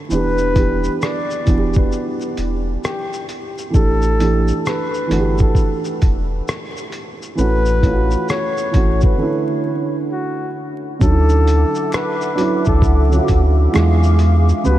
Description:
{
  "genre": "lo-fi hip hop",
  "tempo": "66 BPM",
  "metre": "4/4",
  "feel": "swing 63% on 16ths",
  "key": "unclear",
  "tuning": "A4 = 440 Hz",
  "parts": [
    { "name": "dark upright piano", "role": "accompaniment", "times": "0.0-14.8 s", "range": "C#3 to G4", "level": "-20 LUFS", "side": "right 3 dB", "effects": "low-pass filter" },
    { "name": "warm flugelhorn", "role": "melody", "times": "0.1-14.8 s", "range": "F#4 to D5", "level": "-23 LUFS", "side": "left 3 dB", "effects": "low-pass filter, tape echo" },
    { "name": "warm sub bass", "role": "bass", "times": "0.1-14.8 s", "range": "E1 to E2", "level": "-16 LUFS", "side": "equal", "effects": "none" },
    { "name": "lo-fi sampler-style drum kit", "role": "drums", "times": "0.1-14.8 s", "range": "hi-hat, kick drum, rim click, shaker", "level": "-19 LUFS", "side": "equal", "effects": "none" },
    { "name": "hollow soft pad", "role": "sustained chords", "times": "11.0-14.8 s", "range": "G#4 to D6", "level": "-26 LUFS", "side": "left 2 dB", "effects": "chorus, low-pass filter" },
    { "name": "finger snaps", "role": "percussion", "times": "11.9-14.0 s", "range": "none", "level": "barely audible", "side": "none", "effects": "none" }
  ],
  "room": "moderate huge ambient reverb, RT60 4.0 s",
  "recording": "dreamy mix soaked in reverb, vinyl crackle",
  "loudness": "-14 LUFS",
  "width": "side -14 dB against mid",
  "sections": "0.0-11.0 A section; 11.0-14.8 B section",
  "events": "break 9.2-11.0",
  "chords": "0.1 Em7; 3.7 A7sus4; 7.4 F#m7/A; 9.2 Dmaj9; 13.7 E7b9"
}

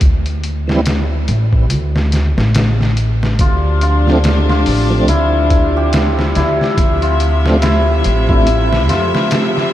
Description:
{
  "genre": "trip hop",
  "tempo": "71 BPM",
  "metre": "4/4",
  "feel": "swing 58% on 16ths",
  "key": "D minor",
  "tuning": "A4 = 440 Hz",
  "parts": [
    { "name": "upright bass", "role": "bass", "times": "0.0-9.1 s", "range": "A1 to F2", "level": "-15 LUFS", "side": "equal", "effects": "none" },
    { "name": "trip hop sampler-style drum kit", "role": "drums", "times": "0.0-9.7 s", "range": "hi-hat, kick drum, snare drum", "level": "-17 LUFS", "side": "equal", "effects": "studio reverb" },
    { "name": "tonewheel organ", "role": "accompaniment", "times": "0.7-8.5 s", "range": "E3 to E4", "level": "-22 LUFS", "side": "right 1 dB", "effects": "overdrive, chorus vibrato, slow rotary speaker, tremolo, tape echo" },
    { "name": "cimbalom", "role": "melody", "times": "3.4-9.7 s", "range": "E4 to G4", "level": "-18 LUFS", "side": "left 1 dB", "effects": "tape echo" },
    { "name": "bright chamber string section", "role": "sustained chords", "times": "3.4-9.7 s", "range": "C3 to E5", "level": "-18 LUFS", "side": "left 1 dB", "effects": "none" }
  ],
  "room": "moderate huge ambient reverb, RT60 7.1 s",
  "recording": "dreamy mix soaked in reverb",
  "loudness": "-11 LUFS",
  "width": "side -13 dB against mid",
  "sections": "0.0-9.7 A section",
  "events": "none",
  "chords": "0.0 N.C.; 3.4 Dm7"
}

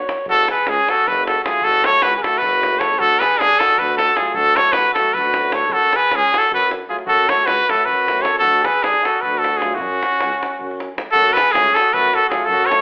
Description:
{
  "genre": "balkan folk, Balkan brass band",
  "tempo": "309 BPM (eighths)",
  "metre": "7/8",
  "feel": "straight",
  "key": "F# harmonic minor",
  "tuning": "A4 = 439 Hz",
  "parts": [
    { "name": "warm flugelhorn", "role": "second line", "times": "0.0-12.8 s", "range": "C#4 to C#5", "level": "-27 LUFS", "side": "equal", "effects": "none" },
    { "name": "mellow euphonium", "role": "accompaniment", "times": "0.0-12.8 s", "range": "F#3", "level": "-39 LUFS", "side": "equal", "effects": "none" },
    { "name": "mellow trombone", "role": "accompaniment", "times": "0.0-12.8 s", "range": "A3", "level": "-39 LUFS", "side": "equal", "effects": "none" },
    { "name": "davul", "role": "percussion", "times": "0.0-12.8 s", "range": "none", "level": "-30 LUFS", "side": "equal", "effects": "none" },
    { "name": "clear trumpet", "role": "melody", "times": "0.3-12.8 s", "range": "F#4 to C#5", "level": "-17 LUFS", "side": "equal", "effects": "none" },
    { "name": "warm tuba", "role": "bass", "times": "0.3-12.7 s", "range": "F#1 to F#2", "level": "-32 LUFS", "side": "equal", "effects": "none" }
  ],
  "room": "wet large studio reverb, RT60 0.9 s",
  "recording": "band playing live in one room, telephone sound",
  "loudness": "-17 LUFS",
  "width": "mono",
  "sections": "0.3-11.1 A section; 11.1-12.8 A section",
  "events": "none",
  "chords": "0.3 F#m; 3.0 D; 5.7 F#m; 8.4 D; 9.8 F#5; 11.1 F#m"
}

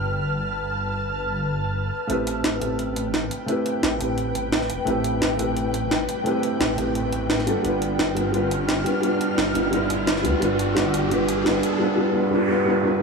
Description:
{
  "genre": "liquid drum and bass",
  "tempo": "173 BPM",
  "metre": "4/4",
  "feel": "straight",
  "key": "A minor",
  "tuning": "A4 = 440 Hz",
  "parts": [
    { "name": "felt-muted upright piano", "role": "accompaniment", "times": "0.0-13.0 s", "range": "G3 to B4", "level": "-23 LUFS", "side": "equal", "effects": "tape echo" },
    { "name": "ethereal airy pad", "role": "sustained chords", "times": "0.0-11.8 s", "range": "B4 to F6", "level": "-29 LUFS", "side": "left 1 dB", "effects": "ensemble chorus, built-in reverb, tremolo" },
    { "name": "swelling detuned saw bass", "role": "bass", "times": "0.0-11.6 s", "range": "E1 to D2", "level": "-29 LUFS", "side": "equal", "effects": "none" },
    { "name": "jungle sampler-style drum kit", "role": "drums", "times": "2.1-11.7 s", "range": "hi-hat, snare drum", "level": "-26 LUFS", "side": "right 1 dB", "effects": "low-pass filter on hats, low-pass filter on snare" },
    { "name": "riser and noise sweep", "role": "sound effects", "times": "3.7-13.0 s", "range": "none", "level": "-30 LUFS", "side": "right 2 dB", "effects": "none" }
  ],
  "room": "moderate plate reverb, RT60 2.1 s",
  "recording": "none",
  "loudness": "-20 LUFS",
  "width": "side -4 dB against mid",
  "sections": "0.0-2.1 A section; 2.1-13.0 B section",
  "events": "build-up 2.1-13.0; riser 3.7-11.8; noise sweep 11.8-13.0",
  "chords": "0.0 G7; 2.1 Am9; 7.5 G7"
}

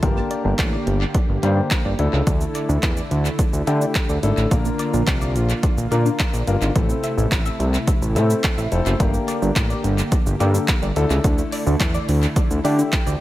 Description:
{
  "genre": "dance-pop",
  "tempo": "107 BPM",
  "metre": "4/4",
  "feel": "straight",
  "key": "D minor",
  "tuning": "A4 = 440 Hz",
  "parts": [
    { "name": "warm grand piano", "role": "accompaniment", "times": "0.0-13.2 s", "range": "A3 to E5", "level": "-26 LUFS", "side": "left 3 dB", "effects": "sidechain pumping" },
    { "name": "soft supersaw", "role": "sustained chords", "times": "0.0-13.2 s", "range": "C3 to G4", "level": "-29 LUFS", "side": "right 1 dB", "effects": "sidechain pumping" },
    { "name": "tight sequenced synth", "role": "arpeggios", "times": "0.0-13.2 s", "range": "D3 to E5", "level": "-31 LUFS", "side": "right 1 dB", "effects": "chorus, phaser, sidechain pumping, tape echo" },
    { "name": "fat analog bass", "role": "bass", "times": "0.0-13.2 s", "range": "F1 to D3", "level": "-20 LUFS", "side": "equal", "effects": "sidechain pumping" },
    { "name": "punchy analog drum machine", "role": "drums", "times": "0.0-13.2 s", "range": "handclaps, hi-hat, kick drum, shaker", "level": "-21 LUFS", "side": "equal", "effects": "tape echo" }
  ],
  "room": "little or no reverb",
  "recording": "echo-heavy mix",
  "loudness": "-17 LUFS",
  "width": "side -15 dB against mid",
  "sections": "0.0-13.2 A section",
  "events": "grand piano fill 12.4-13.2",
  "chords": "0.0 Gm; 2.0 Dsus2; 4.5 Bb; 6.8 Am; 9.0 Gm; 11.0 Dsus2"
}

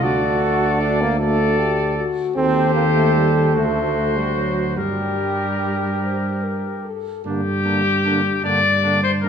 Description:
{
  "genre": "classical, brass quintet",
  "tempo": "48-52 BPM (dotted quarters)",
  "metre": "6/8",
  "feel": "rubato",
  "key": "G minor",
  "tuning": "A4 = 439 Hz",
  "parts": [
    { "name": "warm trumpet", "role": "melody", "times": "0.0-9.3 s", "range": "G4 to D5", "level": "-22 LUFS", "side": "left 4 dB", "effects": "none" },
    { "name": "dark trumpet", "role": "second line", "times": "0.0-9.3 s", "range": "D4 to A4", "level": "-26 LUFS", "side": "right 5 dB", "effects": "none" },
    { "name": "mellow French horn", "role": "accompaniment", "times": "0.0-9.3 s", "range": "Bb3 to C5", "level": "-26 LUFS", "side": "left 4 dB", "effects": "none" },
    { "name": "warm trombone", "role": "accompaniment", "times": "0.0-9.3 s", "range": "D3 to F#4", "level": "-24 LUFS", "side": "right 2 dB", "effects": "none" },
    { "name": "warm tuba", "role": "bass", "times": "0.0-9.3 s", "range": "D2 to G2", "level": "-22 LUFS", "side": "right 1 dB", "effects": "none" }
  ],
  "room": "wet recital hall reverb, RT60 1.7 s",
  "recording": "recorded in a church or concert hall",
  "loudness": "-17 LUFS",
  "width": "side -7 dB against mid",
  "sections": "0.0-7.3 A section; 7.3-9.3 A section",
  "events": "none",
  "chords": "0.0 D; 2.4 Cm/Eb; 3.5 D7; 4.8 Gm"
}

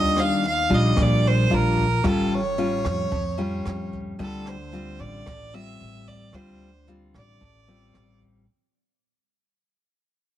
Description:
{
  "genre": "bossa nova",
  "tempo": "112 BPM",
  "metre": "4/4",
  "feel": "straight",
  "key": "D minor",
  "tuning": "A4 = 440 Hz",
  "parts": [
    { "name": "clear fiddle", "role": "melody", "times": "0.0-8.2 s", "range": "A4 to F5", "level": "-27 LUFS", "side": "right 1 dB", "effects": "none" },
    { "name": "nylon-string guitar", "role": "accompaniment", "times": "0.0-8.5 s", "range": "A2 to F4", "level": "-25 LUFS", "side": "left 2 dB", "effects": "none" },
    { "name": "upright bass", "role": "bass", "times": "0.0-8.4 s", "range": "A1 to E#2", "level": "-26 LUFS", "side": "right 1 dB", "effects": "none" },
    { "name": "jazz brush drum kit", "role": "drums", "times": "0.2-8.3 s", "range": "hi-hat, kick drum, rim click", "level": "-31 LUFS", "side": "right 1 dB", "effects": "none" }
  ],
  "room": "light reverb",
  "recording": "heavily compressed radio sound",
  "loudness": "-20 LUFS",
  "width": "side -12 dB against mid",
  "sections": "0.0-8.5 A section",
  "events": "fade-out 0.0-8.5",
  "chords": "0.0 Ebmaj9; 2.0 Aaug7; 4.2 Dm11"
}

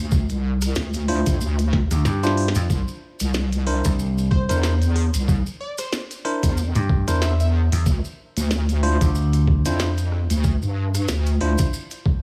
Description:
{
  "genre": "glitch hop",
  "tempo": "93 BPM",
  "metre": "4/4",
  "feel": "swing 56% on 16ths",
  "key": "D minor",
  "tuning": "A4 = 440 Hz",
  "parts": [
    { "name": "wobble bass", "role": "bass", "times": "0.0-11.6 s", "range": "C2 to G2", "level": "-23 LUFS", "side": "equal", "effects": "chorus" },
    { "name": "electronic kick drum", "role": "drums", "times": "0.1-12.2 s", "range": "none", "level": "-23 LUFS", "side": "equal", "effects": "overdrive, studio reverb" },
    { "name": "maracas", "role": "percussion", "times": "0.1-12.0 s", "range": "none", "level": "-37 LUFS", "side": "equal", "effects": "none" },
    { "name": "glitchy drum kit", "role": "drums", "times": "0.3-12.0 s", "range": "hi-hat, rim click, snare drum", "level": "-32 LUFS", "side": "equal", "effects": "studio reverb" },
    { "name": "bell-like tine electric piano", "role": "stabs", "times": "1.1-11.7 s", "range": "D4 to C5", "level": "-30 LUFS", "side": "equal", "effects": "sidechain pumping, tape echo" },
    { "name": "vintage slap bass", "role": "bass", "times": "1.9-9.6 s", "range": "C2 to G2", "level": "-22 LUFS", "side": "equal", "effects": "none" },
    { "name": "plucky unison lead", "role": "melody", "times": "4.3-7.5 s", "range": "C5 to E5", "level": "-35 LUFS", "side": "equal", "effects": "subtle chorus, tape echo" }
  ],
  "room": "little or no reverb",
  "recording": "studio ambience",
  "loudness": "-21 LUFS",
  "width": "mono",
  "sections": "0.0-12.2 A section",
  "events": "kick drops out 2.1-2.7; drum fill 2.1-2.7",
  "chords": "0.0 Dm9; 2.7 C9; 7.9 Dm9"
}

